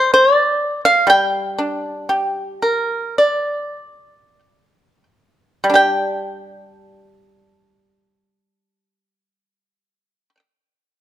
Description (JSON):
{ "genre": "chinese traditional, Chinese solo plucked strings", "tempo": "44-65 BPM", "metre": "4/4", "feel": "rubato", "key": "unclear", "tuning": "A4 = 440 Hz", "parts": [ { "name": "pipa", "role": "solo", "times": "0.0-10.4 s", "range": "G3 to G5", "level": "-14 LUFS", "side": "equal", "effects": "none" } ], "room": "light reverb", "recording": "close, detailed microphones", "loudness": "-15 LUFS", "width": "side -12 dB against mid", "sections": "0.0-5.7 A section; 5.7-11.0 B section", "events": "slowing down 0.0-5.7", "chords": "none" }